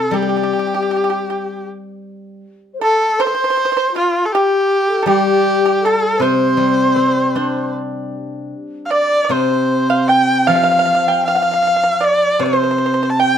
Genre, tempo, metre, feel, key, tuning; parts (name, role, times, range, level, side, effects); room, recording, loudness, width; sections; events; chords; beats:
chinese traditional, Chinese chamber ensemble; 78 BPM; 4/4; rubato; C zhi mode; A4 = 440 Hz
rich erhu; melody; 0.0-13.4 s; F4 to A5; -17 LUFS; right 1 dB
mellow xiao; second line; 0.0-13.4 s; F4 to G5; -20 LUFS; left 5 dB
pipa; second line; 0.0-13.4 s; F4 to G5; -21 LUFS; right 5 dB
steel-string zither; accompaniment; 0.0-13.4 s; C3 to D4; -19 LUFS; left 1 dB
wet studio reverb, RT60 0.9 s; -13 LUFS; side -8 dB against mid
0.0-13.4 A section
| 0.13 0.90 1.66 2.42 | 3.18 3.93 4.69 5.44 | 6.20 6.96 7.73 8.52 | 9.31 10.10 10.87 11.64 | 12.41 13.18